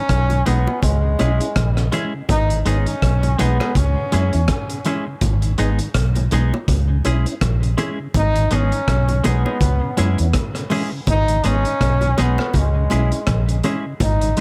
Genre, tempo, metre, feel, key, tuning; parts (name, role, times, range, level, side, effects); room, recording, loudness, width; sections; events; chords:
roots reggae; 82 BPM; 4/4; swing 57% on 16ths; A4 = 440 Hz
brilliant trombone; melody; 0.0-14.4 s; G#3 to D#4; -26 LUFS; equal; tape echo
mellow tonewheel organ; accompaniment; 0.0-14.4 s; G#2 to E4; -32 LUFS; equal; overdrive, chorus vibrato, slow rotary speaker
vintage muted fingered electric bass; bass; 0.1-14.3 s; G#1 to F#2; -20 LUFS; equal
crunchy breakbeat drum kit; drums; 0.1-14.4 s; hi-hat, kick drum, rim click; -25 LUFS; equal
bongos; percussion; 0.3-14.2 s; -30 LUFS; equal
semi-hollow electric guitar; accompaniment; 0.5-14.4 s; G#3 to G#4; -28 LUFS; equal; tape echo
light reverb, small room ambience; -19 LUFS; mono
0.0-14.4 A section
0.0 G#m; 0.8 C#m; 2.3 G#m; 3.8 C#m; 5.2 G#m; 6.7 C#m; 8.1 G#m; 9.6 C#m; 11.1 G#m; 12.5 C#m